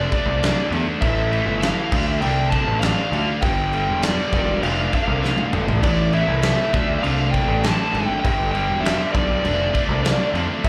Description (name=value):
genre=quiet-loud alternative rock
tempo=100 BPM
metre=4/4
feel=straight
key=unclear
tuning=A4 = 440 Hz
part: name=dark smooth lead guitar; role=melody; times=0.0-10.7 s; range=D5 to A5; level=-27 LUFS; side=equal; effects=overdrive, slapback echo
part: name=overdriven electric guitar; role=riff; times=0.0-10.7 s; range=G2 to D4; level=-27 LUFS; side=equal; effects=slapback echo
part: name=fuzz picked electric bass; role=bass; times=0.0-10.7 s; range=E1 to F2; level=-25 LUFS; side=equal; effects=overdrive
part: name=huge arena drum kit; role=drums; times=0.1-10.7 s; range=crash cymbal, kick drum, snare drum, toms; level=-26 LUFS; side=equal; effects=none
room=light reverb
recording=live gig heard through the venue's PA, club reverb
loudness=-20 LUFS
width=mono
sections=0.0-10.7 A section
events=drum fill 5.2-5.8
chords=0.0 D7(no3); 1.0 A5; 1.9 Dm7; 3.4 G5; 4.6 Dm7/F; 5.8 Am; 6.7 D5; 8.2 G; 9.4 Dm7/F